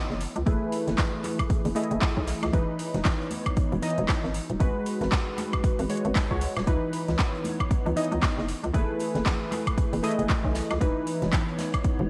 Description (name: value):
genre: deep house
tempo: 116 BPM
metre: 4/4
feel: swing 59% on 16ths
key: C# minor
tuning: A4 = 442 Hz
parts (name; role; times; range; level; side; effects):
- hollow soft pad; sustained chords; 0.0-12.1 s; E3 to C#5; -39 LUFS; equal; chorus, sidechain pumping
- warm analog keys; stabs; 0.0-12.1 s; E3 to D#5; -32 LUFS; equal; chorus, sidechain pumping, low-pass filter, digital delay
- hollow knocking FM bass; bass; 0.1-12.1 s; D#1 to C#2; -32 LUFS; equal; none
- big rock drum kit; drums; 0.1-12.0 s; hi-hat, snare drum; -47 LUFS; equal; none
- deep house drum kit; drums; 0.2-12.0 s; handclaps, hi-hat, woodblock; -35 LUFS; equal; overdrive, vintage 12-bit sampler grit, gated reverb
- electronic kick drum; drums; 0.5-12.0 s; none; -28 LUFS; equal; overdrive, vintage 12-bit sampler grit
- congas; percussion; 0.9-12.1 s; none; -39 LUFS; equal; none
room: light reverb, studio ambience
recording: bright 1980s-style digital production, lossy compression artefacts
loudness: -27 LUFS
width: mono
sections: 0.0-12.1 A section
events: filter sweep on synth keys 0.0-12.1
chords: 0.2 F#m11; 2.5 C#m9/E; 4.3 G#m7; 6.7 C#m9; 8.5 F#m11; 10.8 C#m9/E